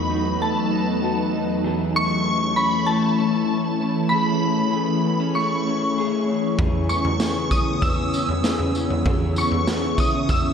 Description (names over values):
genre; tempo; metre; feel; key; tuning
dream pop; 97 BPM; 4/4; straight; E major; A4 = 440 Hz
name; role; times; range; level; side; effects
shimmering bell with halo; melody; 0.0-10.5 s; A5 to E6; -25 LUFS; equal; ensemble chorus, tape echo
ethereal airy pad; sustained chords; 0.0-10.5 s; E2 to D#5; -24 LUFS; equal; ensemble chorus, built-in reverb
electric guitar at the edge of break-up; arpeggios; 0.0-10.5 s; E3 to G#4; -25 LUFS; left 2 dB; lush chorus, tape echo
raw garage drum kit; drums; 6.6-10.4 s; kick drum, snare drum, tambourine, toms; -22 LUFS; right 1 dB; none
vibraphone with medium mallets; texture; 6.8-10.5 s; E5 to G#5; -40 LUFS; right 4 dB; stereo widening, tape echo
room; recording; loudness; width
wet cathedral reverb, RT60 5.1 s; dreamy mix soaked in reverb; -19 LUFS; side -7 dB against mid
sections
0.0-10.5 A section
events
none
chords
0.0 B7/E; 1.6 Amaj7/E; 6.6 E6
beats
0.40 1.02 | 1.64 2.26 2.88 3.50 | 4.11 4.73 5.35 5.97 | 6.59 7.21 7.82 8.44 | 9.06 9.68 10.30